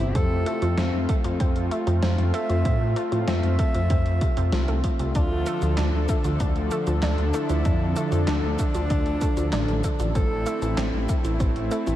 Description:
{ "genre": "synthwave", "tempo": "96 BPM", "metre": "4/4", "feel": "straight", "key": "D minor", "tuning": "A4 = 441 Hz", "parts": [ { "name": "clear alto saxophone", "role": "melody", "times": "0.0-11.0 s", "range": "D4 to E5", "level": "-32 LUFS", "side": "right 1 dB", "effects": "analog delay" }, { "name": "warm analog pad", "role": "sustained chords", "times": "0.0-12.0 s", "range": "C3 to A4", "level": "-29 LUFS", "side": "equal", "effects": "chorus, vintage 12-bit sampler grit, sidechain pumping" }, { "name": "analog pluck", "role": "arpeggios", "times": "0.0-11.9 s", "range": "C3 to D4", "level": "-32 LUFS", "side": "right 1 dB", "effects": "chorus, cassette tape, analog delay" }, { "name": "wide detuned saw bass", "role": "bass", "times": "0.0-12.0 s", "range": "G1 to A2", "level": "-24 LUFS", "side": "equal", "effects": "chorus" }, { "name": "gated 80s digital drum machine", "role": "drums", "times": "0.0-12.0 s", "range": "cabasa, handclaps, hi-hat, snare drum", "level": "-34 LUFS", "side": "equal", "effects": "gated reverb, gated reverb snare" }, { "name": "electronic kick drum", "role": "drums", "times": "0.2-11.5 s", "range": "none", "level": "-24 LUFS", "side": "equal", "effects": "overdrive" } ], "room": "light reverb, digital ambience", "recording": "none", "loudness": "-21 LUFS", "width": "side -13 dB against mid", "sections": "0.0-12.0 A section", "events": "none", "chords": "0.2 F; 5.2 Dm; 10.2 Am" }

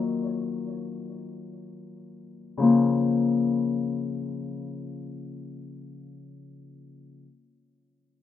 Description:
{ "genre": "hip hop", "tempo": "free time", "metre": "none", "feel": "none", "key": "Bb minor", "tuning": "A4 = 441 Hz", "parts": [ { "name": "Celtic harp", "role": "accompaniment", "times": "0.0-7.3 s", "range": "Db3 to F4", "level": "-25 LUFS", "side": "left 4 dB", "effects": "low-pass filter" } ], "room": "small room ambience", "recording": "rough home demo mix", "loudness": "-23 LUFS", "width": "side -10 dB against mid", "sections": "0.0-2.6 A section; 2.6-6.0 B section", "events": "filter sweep on harp 0.0-2.6", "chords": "0.0 Ebmadd9; 2.6 Bbm" }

